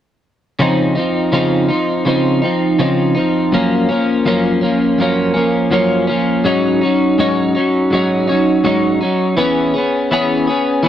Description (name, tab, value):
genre	indie pop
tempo	82 BPM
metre	4/4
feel	swing 55% on 16ths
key	Db major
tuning	A4 = 440 Hz
part	twelve-string electric guitar	solo	0.6-10.9 s	Gb2 to G#4	-12 LUFS	equal	lush chorus, vibrato effect
room	moderate small room reverb, RT60 0.6 s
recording	none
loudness	-13 LUFS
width	side -10 dB against mid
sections	0.6-10.9 A section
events	none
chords	0.6 Dbmaj9; 3.5 Gbmaj7; 6.5 Ab7sus4; 9.4 E6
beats	| 0.60 1.33 2.06 2.80 | 3.53 4.26 4.99 5.73 | 6.46 7.19 7.92 8.65 | 9.39 10.12 10.85